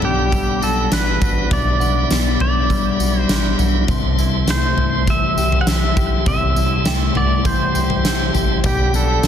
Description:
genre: dream pop.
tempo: 101 BPM.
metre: 4/4.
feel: straight.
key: C lydian.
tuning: A4 = 437 Hz.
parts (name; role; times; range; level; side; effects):
pedal steel guitar; melody; 0.0-9.3 s; G4 to F#5; -22 LUFS; right 1 dB; digital delay.
tonewheel organ; sustained chords; 0.0-9.3 s; G3 to C6; -26 LUFS; right 1 dB; fast rotary speaker.
mellow electric guitar; arpeggios; 0.0-9.3 s; B2 to G4; -22 LUFS; left 4 dB; lush chorus, digital delay.
saturated sub bass; bass; 0.0-9.3 s; A1 to C2; -22 LUFS; right 1 dB; none.
huge arena drum kit; drums; 0.0-9.3 s; kick drum, snare drum, tambourine, toms; -20 LUFS; equal; none.
glassy synth bell; texture; 0.0-3.0, 6.9-8.3 s; E5 to G5; -35 LUFS; right 4 dB; chorus, phaser, digital delay.
room: light reverb, small room ambience.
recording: dense, heavily limited modern master.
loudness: -15 LUFS.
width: side -9 dB against mid.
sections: 0.0-9.3 A section.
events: none.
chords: 0.0 Gmaj7; 3.9 C6; 8.6 Gmaj7/B.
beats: 0.32 0.92 | 1.51 2.11 2.70 3.29 | 3.89 4.48 5.08 5.67 | 6.26 6.86 7.45 8.05 | 8.64 9.23.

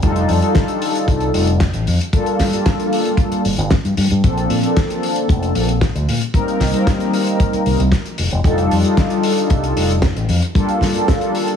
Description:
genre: nu-disco, nu disco.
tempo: 114 BPM.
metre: 4/4.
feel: straight.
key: unclear.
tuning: A4 = 440 Hz.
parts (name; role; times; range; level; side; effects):
mellow synth brass; accompaniment; 0.0-11.6 s; F3 to Bb4; -18 LUFS; left 1 dB; chorus, tape echo.
fingered electric bass with an envelope filter; bass; 0.0-10.9 s; F1 to Bb2; -18 LUFS; left 1 dB; none.
damped 70s drum kit; drums; 0.0-11.6 s; hi-hat, snare drum; -23 LUFS; left 2 dB; studio reverb.
kick drum; drums; 0.0-11.2 s; none; -17 LUFS; equal; studio reverb.
room: light reverb.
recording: heavily compressed radio sound, multiband compression.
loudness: -14 LUFS.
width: side -8 dB against mid.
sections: 0.0-11.6 A section.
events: none.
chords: 0.0 F13; 2.1 Gm9; 4.2 Bbmaj9; 6.3 Cm7; 8.2 F13; 10.6 Gm9.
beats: | 0.03 0.56 1.08 1.61 | 2.13 2.66 3.19 3.71 | 4.24 4.76 5.29 5.82 | 6.34 6.87 7.40 7.92 | 8.45 8.98 9.50 10.03 | 10.55 11.08.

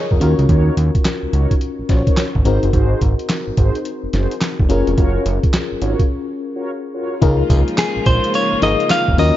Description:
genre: R&B, new jack swing.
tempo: 107 BPM.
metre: 4/4.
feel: swing 63% on 16ths.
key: Db major.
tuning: A4 = 440 Hz.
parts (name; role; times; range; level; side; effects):
FM electric piano with auto-pan; accompaniment; 0.0-9.4 s; C4 to Eb5; -22 LUFS; left 5 dB; none.
fat analog bass; bass; 0.1-9.3 s; F1 to Eb2; -17 LUFS; equal; none.
boom bap sampler-style drum kit; drums; 0.1-9.3 s; handclaps, hi-hat, kick drum, snare drum, tambourine; -18 LUFS; equal; none.
mellow synth brass; stabs; 0.2-7.1 s; Eb4 to Db5; -25 LUFS; right 1 dB; chorus, ping-pong delay.
warm studio string section; sustained chords; 7.2-9.4 s; Db3 to F4; -23 LUFS; equal; none.
direct-recorded clean electric guitar; melody; 7.8-9.4 s; Ab4 to F5; -17 LUFS; left 1 dB; none.
group handclap; percussion; 7.8-9.1 s; none; barely audible; none; none.
room: light reverb.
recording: dark, warm production, nothing above 7.6 kHz.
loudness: -14 LUFS.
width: side -13 dB against mid.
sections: 0.0-7.2 A section; 7.2-9.4 B section.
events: break 6.1-7.2.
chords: 0.2 Ebm7; 2.5 Ab7; 4.7 Gbmaj7; 7.2 Db6.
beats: | 0.49 1.05 1.61 2.17 | 2.73 3.29 3.85 4.42 | 4.98 5.54 6.10 6.66 | 7.22 7.78 8.34 8.90.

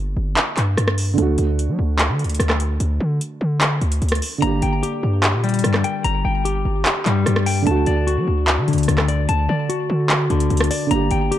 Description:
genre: hip hop, trap.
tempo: 148 BPM.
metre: 4/4.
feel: half-time.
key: unclear.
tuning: A4 = 440 Hz.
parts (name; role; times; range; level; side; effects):
felt-muted upright piano; accompaniment; 0.0-11.4 s; D3 to G4; -25 LUFS; right 4 dB; none.
hard-hitting 808-style bass; bass; 0.0-11.3 s; G1 to F#3; -20 LUFS; equal; none.
booming analog drum machine; drums; 0.4-11.4 s; handclaps, hi-hat, rim click; -21 LUFS; equal; overdrive.
semi-hollow electric guitar; arpeggios; 4.4-11.4 s; D3 to Bb5; -22 LUFS; left 5 dB; tape echo.
room: light reverb.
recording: dark, warm production.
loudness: -17 LUFS.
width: side -12 dB against mid.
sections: 0.0-11.4 A section.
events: none.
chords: 0.0 Gm; 1.2 D; 4.4 Gm; 7.7 D.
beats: 0.37 0.77 | 1.18 1.58 1.99 2.40 | 2.80 3.21 3.61 4.02 | 4.42 4.83 5.23 5.64 | 6.04 6.45 6.86 7.26 | 7.67 8.07 8.48 8.88 | 9.29 9.69 10.10 10.50 | 10.91 11.31.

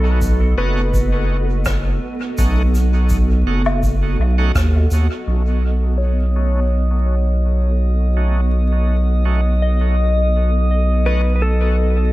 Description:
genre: ambient dub.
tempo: 83 BPM.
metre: 4/4.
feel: swing 53% on 16ths.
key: B mixolydian.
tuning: A4 = 439 Hz.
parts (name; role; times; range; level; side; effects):
clean lap steel guitar; melody; 0.0-4.5, 11.1-12.1 s; A4 to B4; -26 LUFS; equal; dub echo.
granular cloud pad; sustained chords; 0.0-12.1 s; B3 to D#5; -26 LUFS; right 1 dB; built-in reverb.
round analog bass; bass; 0.0-12.1 s; F#1 to D#2; -15 LUFS; equal; none.
electronic kick drum; drums; 0.2-4.7 s; none; -22 LUFS; equal; none.
shaker, rim click and woodblock; drums; 0.2-5.1 s; none; -27 LUFS; left 1 dB; dub echo.
bright tonewheel organ; stabs; 0.6-11.2 s; A3 to F#4; -30 LUFS; right 2 dB; overdrive, slow rotary speaker, low-pass filter, dub echo.
drifting glass-harmonics texture; texture; 6.0-12.1 s; D#5; -29 LUFS; left 1 dB; chorus, built-in reverb.
soft synth bell; arpeggios; 6.0-12.1 s; C#5 to D#5; -28 LUFS; left 5 dB; chorus, phaser, vintage 12-bit sampler grit, low-pass filter, tape echo.
room: little or no reverb.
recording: vinyl crackle.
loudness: -15 LUFS.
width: side -17 dB against mid.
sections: 0.0-5.3 A section; 5.3-12.1 B section.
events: filter sweep on tonewheel organ 5.3-12.1; filter sweep on synth bell 5.3-12.1.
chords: 0.0 B7.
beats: 0.22 0.94 1.66 | 2.38 3.11 3.83 4.55 | 5.28 6.00 6.72 7.45 | 8.17 8.89 9.61 10.34 | 11.06 11.78.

